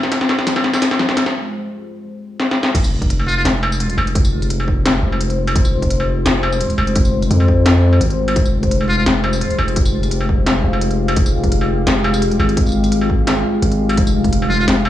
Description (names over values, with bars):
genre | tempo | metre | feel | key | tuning
half-time drum and bass | 171 BPM | 4/4 | swing 53% on 16ths, half-time | F minor | A4 = 442 Hz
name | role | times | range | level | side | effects
deep dark ambient pad | sustained chords | 0.0-14.9 s | Ab3 to F5 | -21 LUFS | left 1 dB | chorus, built-in reverb, vintage 12-bit sampler grit, sidechain pumping
warbly dusty pluck | arpeggios | 0.0-1.3, 14.0-14.9 s | F3 | -28 LUFS | equal | chorus, analog delay
long sustained 808-style bass | bass | 0.0-14.9 s | F1 to F2 | -18 LUFS | equal | tube saturation, high-pass filter
industrial drum kit | drums | 0.0-14.9 s | crash cymbal, hi-hat, snare drum, struck metal, tambourine | -19 LUFS | left 1 dB | none
electronic kick drum | drums | 2.7-14.3 s | none | -18 LUFS | equal | none
trumpet with metal mute | melody | 3.3-3.4, 8.9-9.0, 14.5-14.6 s | F4 | -22 LUFS | left 1 dB | analog delay
room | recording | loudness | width
light reverb, digital ambience | dry, gritty hardware recording, studio reverb | -14 LUFS | side -12 dB against mid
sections
0.0-2.7 A section; 2.7-14.9 B section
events
build-up 0.0-2.7; drum fill 0.0-1.3, 2.4-2.7; filter sweep on synth pluck 0.0-2.7; break 1.3-2.7; drop 2.7-14.9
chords
0.0 Fmadd9